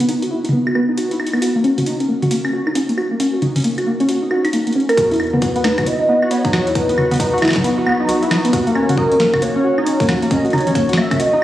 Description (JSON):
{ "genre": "IDM", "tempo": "135 BPM", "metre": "4/4", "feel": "swing 62% on 16ths", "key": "unclear", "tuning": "A4 = 436 Hz", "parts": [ { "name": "warbly dusty pluck", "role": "arpeggios", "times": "0.0-11.4 s", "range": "A#3 to A#4", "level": "-16 LUFS", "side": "equal", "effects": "ensemble chorus, cassette tape, digital delay" }, { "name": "booming analog drum machine", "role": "drums", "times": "0.0-11.3 s", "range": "claves, hi-hat, snare drum, toms", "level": "-22 LUFS", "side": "equal", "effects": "ping-pong delay" }, { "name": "round analog bass", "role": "bass", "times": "5.0-11.2 s", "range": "A#1 to E2", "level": "-26 LUFS", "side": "left 1 dB", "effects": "none" }, { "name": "electronic kick drum", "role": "drums", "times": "5.0-11.2 s", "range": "none", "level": "-22 LUFS", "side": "equal", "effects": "none" }, { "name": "warbly nostalgic lead", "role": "melody", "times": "5.4-11.4 s", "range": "A#4 to E5", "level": "-18 LUFS", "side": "equal", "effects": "analog chorus, digital delay" } ], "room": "moderate echo chamber reverb, RT60 2.2 s", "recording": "recorded on a phone in the room, studio reverb", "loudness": "-14 LUFS", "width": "side -13 dB against mid", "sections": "0.0-5.0 A section; 5.0-11.4 B section", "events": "none", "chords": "0.0 Esus2; 1.4 D#m7; 5.0 Esus2; 8.5 D#m7" }